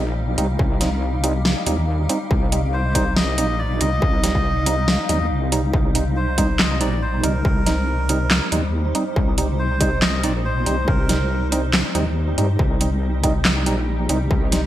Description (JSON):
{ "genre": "deep dubstep", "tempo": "140 BPM", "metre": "4/4", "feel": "swing 54% on 16ths, half-time", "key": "C minor", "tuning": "A4 = 441 Hz", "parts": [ { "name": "granular cloud pad", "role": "sustained chords", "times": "0.0-14.7 s", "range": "G3 to F5", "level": "-28 LUFS", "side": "equal", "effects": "built-in reverb" }, { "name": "percussive organ stab", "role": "stabs", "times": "0.0-14.6 s", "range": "G3 to Eb4", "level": "-26 LUFS", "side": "right 2 dB", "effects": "analog chorus, cassette tape, dub echo" }, { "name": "wobble bass", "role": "bass", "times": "0.0-14.7 s", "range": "Bb1 to G2", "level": "-21 LUFS", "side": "equal", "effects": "chorus" }, { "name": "dubstep drum kit", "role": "drums", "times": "0.4-14.6 s", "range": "handclaps, hi-hat, snare drum", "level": "-21 LUFS", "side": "equal", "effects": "studio reverb, gated reverb" }, { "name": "electronic kick drum", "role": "drums", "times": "0.6-14.4 s", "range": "none", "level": "-21 LUFS", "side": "equal", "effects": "distortion, studio reverb" }, { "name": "melodica", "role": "melody", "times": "2.7-11.5 s", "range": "Bb4 to Eb5", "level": "-27 LUFS", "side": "left 1 dB", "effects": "dub echo" } ], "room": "light reverb, digital ambience", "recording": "bright 1980s-style digital production", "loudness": "-17 LUFS", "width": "side -13 dB against mid", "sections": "0.0-14.7 A section", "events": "none", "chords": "0.0 Cm" }